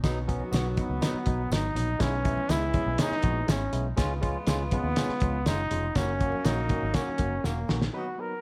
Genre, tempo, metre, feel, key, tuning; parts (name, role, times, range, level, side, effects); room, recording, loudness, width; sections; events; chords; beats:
uptempo 1960s-style soul; 122 BPM; 4/4; straight; A4 = 439 Hz
mellow horn section; second line; 0.0-8.0 s; D#3 to B4; -41 LUFS; equal
barky tine electric piano; accompaniment; 0.0-8.3 s; F#3 to B4; -37 LUFS; equal
vintage muted fingered electric bass; bass; 0.0-7.9 s; E1 to D#2; -34 LUFS; equal
cloth-damped thuddy drum kit; drums; 0.0-7.9 s; hi-hat, kick drum, snare drum; -31 LUFS; equal
congas; percussion; 0.0-7.8 s; -44 LUFS; equal
tambourine; percussion; 0.0-7.6 s; -51 LUFS; equal
dark trumpet; melody; 0.8-8.4 s; A#3 to A#4; -34 LUFS; equal
light reverb; dark, warm production; -28 LUFS; mono
0.0-7.9 A section
drum fill 7.4-7.9
0.0 B; 2.0 E/B; 4.0 C#; 6.0 F#
| 0.04 0.53 1.02 1.52 | 2.01 2.50 3.00 3.49 | 3.98 4.48 4.97 5.47 | 5.96 6.46 6.95 7.44 | 7.94